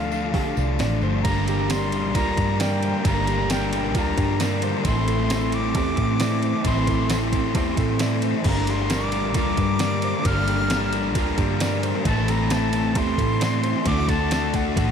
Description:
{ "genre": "rock, shoegaze and dream pop", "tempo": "133 BPM", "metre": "4/4", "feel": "straight", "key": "G dorian", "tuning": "A4 = 441 Hz", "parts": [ { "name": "bright reedy silver concert flute", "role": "melody", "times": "0.0-14.9 s", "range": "F5 to F6", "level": "-29 LUFS", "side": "left 2 dB", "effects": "tape echo" }, { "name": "direct-recorded clean electric guitar", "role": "arpeggios", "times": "0.0-14.9 s", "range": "F4 to D5", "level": "-34 LUFS", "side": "right 8 dB", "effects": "wide subtle chorus, tape echo" }, { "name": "overdriven electric guitar", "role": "riff", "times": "0.0-14.9 s", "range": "G2 to A4", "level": "-26 LUFS", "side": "left 7 dB", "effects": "wide subtle chorus" }, { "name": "overdriven electric guitar", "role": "riff", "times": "0.0-14.9 s", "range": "G2 to Bb4", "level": "-29 LUFS", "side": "right 8 dB", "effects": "reverse reverb" }, { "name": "vintage muted picked electric bass", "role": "bass", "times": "0.0-14.9 s", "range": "G1 to D3", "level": "-25 LUFS", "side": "right 1 dB", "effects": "none" }, { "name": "tambourine", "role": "percussion", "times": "0.1-14.4 s", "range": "none", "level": "-41 LUFS", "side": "right 13 dB", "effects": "none" }, { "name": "detuned 8-bit digital drum machine", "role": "drums", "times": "0.3-14.9 s", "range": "crash cymbal, hi-hat, kick drum, ride cymbal, snare drum", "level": "-27 LUFS", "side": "right 1 dB", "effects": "overdrive" }, { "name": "overdriven semi-hollow guitar", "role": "riff", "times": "1.2-14.9 s", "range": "G2 to F#4", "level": "-29 LUFS", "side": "right 1 dB", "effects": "spring reverb" } ], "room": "moderate plate reverb, RT60 2.1 s", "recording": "dreamy mix soaked in reverb", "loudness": "-20 LUFS", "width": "side -7 dB against mid", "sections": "0.0-1.2 A section; 1.2-14.9 B section", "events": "none", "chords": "0.0 Dm7; 1.2 Gm7; 4.9 Am; 8.5 Gm7; 12.1 Am; 13.9 D", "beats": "0.34 0.79 | 1.24 1.70 2.15 2.60 | 3.05 3.50 3.95 4.41 | 4.86 5.31 5.76 6.21 | 6.66 7.11 7.56 8.01 | 8.46 8.91 9.36 9.81 | 10.26 10.71 11.16 11.61 | 12.06 12.51 12.96 13.41 | 13.86 14.31 14.77" }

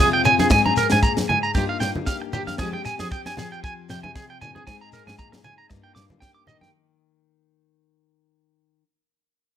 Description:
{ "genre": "highlife guitar band", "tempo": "115 BPM", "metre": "4/4", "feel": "swing 54% on 16ths", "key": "unclear", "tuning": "A4 = 440 Hz", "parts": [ { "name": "picked steel-string acoustic guitar", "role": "accompaniment", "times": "0.0-8.8 s", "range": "F2 to Ab4", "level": "-27 LUFS", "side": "left 10 dB", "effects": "none" }, { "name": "electric guitar at the edge of break-up", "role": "arpeggios", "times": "0.0-6.7 s", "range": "G4 to D6", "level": "-22 LUFS", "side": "right 3 dB", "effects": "slapback echo" }, { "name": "shekere", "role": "percussion", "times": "0.2-6.7 s", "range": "none", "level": "-29 LUFS", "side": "left 2 dB", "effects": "none" }, { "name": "congas", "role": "percussion", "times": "0.3-6.7 s", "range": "none", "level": "-28 LUFS", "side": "equal", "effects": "none" }, { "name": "tight funk drum kit", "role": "drums", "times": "0.4-6.7 s", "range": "kick drum, snare drum", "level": "-23 LUFS", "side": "equal", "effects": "none" }, { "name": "dark cello", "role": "bass", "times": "0.5-6.0 s", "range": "F2 to Ab2", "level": "-26 LUFS", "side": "equal", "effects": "none" } ], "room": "small room ambience", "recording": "none", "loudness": "-19 LUFS", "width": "side -10 dB against mid", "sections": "0.0-6.7 A section", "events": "fade-out 0.0-6.7", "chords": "0.0 Fmadd9; 0.5 Abadd9; 1.6 Ebadd9/G; 2.6 Fmadd9; 4.7 Abadd9; 5.7 Ebadd9/G", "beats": "| 0.51 1.03 1.55 2.07 | 2.59 3.11 3.63 4.15 | 4.67 5.19 5.71 6.23" }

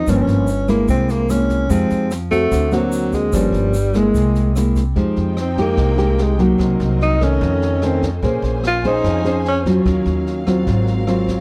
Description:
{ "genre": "bossa nova", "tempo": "147 BPM", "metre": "4/4", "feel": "straight", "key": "F minor", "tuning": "A4 = 441 Hz", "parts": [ { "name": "warm tenor saxophone", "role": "melody", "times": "0.0-9.6 s", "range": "F#3 to F4", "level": "-23 LUFS", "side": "equal", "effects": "slapback echo" }, { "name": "nylon-string guitar", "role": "accompaniment", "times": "0.0-11.4 s", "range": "F2 to C5", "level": "-21 LUFS", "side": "equal", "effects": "none" }, { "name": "upright bass", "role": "bass", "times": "0.0-11.4 s", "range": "G1 to F2", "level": "-23 LUFS", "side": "equal", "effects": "none" }, { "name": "jazz brush drum kit", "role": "drums", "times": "0.1-11.3 s", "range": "kick drum, rim click, snare drum", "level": "-28 LUFS", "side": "equal", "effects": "none" }, { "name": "tube shaker", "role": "percussion", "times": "0.1-5.0 s", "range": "none", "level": "-42 LUFS", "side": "equal", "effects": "none" }, { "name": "warm symphonic string section", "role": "sustained chords", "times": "4.9-11.4 s", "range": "Gb3 to Ab5", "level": "-33 LUFS", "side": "equal", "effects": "none" } ], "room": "little or no reverb", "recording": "dry, close 1970s-style studio recording", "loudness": "-17 LUFS", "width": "mono", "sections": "0.0-5.0 A section; 5.0-11.4 B section", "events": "tenor saxophone solo 5.0-11.4", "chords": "0.1 Gm7b5; 0.9 C7b13; 1.7 Fm9; 2.5 D7b13; 3.3 Gm7b5; 4.1 C7b13; 5.0 Fm9; 6.6 Cm7b5; 7.4 F7b13; 8.2 Bbm9; 9.9 Ebm9; 10.7 Ab13", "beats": "| 0.07 0.48 0.89 1.29 | 1.70 2.11 2.52 2.92 | 3.33 3.74 4.15 4.55 | 4.96 5.37 5.78 6.19 | 6.59 7.00 7.41 7.82 | 8.22 8.63 9.04 9.45 | 9.86 10.26 10.67 11.08" }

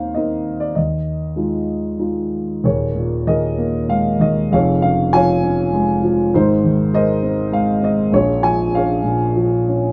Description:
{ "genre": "classical, lyrical solo piano", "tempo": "98 BPM", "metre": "3/4", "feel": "uneven beats, rubato", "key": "unclear", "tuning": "A4 = 441 Hz", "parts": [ { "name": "dark grand piano", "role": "solo", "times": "0.0-9.9 s", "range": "Eb1 to Ab5", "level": "-18 LUFS", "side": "equal", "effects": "none" } ], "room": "moderate studio reverb, RT60 0.5 s", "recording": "dark, warm production", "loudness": "-18 LUFS", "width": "mono", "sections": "0.0-2.6 A section; 2.6-9.9 B section", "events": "none", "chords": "0.0 Cm7/Eb; 0.8 Fm7/Eb; 2.6 Ebsus4; 4.5 Db/F; 6.3 Abadd9; 8.1 Bbm7", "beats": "0.16 | 0.77 1.37 2.00 | 2.64 3.28 3.90 | 4.52 5.13 5.74 | 6.34 6.93 7.53 | 8.13 8.74 9.36" }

